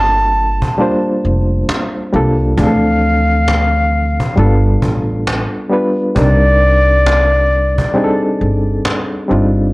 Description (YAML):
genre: lo-fi hip hop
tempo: 67 BPM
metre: 4/4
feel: swing 65% on 16ths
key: unclear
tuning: A4 = 440 Hz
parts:
  - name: breathy mellow silver concert flute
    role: melody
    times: 0.0-8.2 s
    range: D5 to A5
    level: -15 LUFS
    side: left 1 dB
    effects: low-pass filter, plate reverb
  - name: barky reed electric piano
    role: accompaniment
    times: 0.0-9.7 s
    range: E3 to C5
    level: -17 LUFS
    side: equal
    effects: overdrive, fast tremolo, low-pass filter
  - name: upright bass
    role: bass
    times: 0.0-9.7 s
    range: F1 to D2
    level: -14 LUFS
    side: equal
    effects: none
  - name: cajon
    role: drums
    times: 0.3-9.5 s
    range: none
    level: -20 LUFS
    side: equal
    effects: none
room: light reverb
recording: cassette tape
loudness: -11 LUFS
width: side -22 dB against mid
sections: 0.0-9.7 A section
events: none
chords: 0.0 Gm9; 2.6 Dm9; 4.4 G7; 6.2 Cm9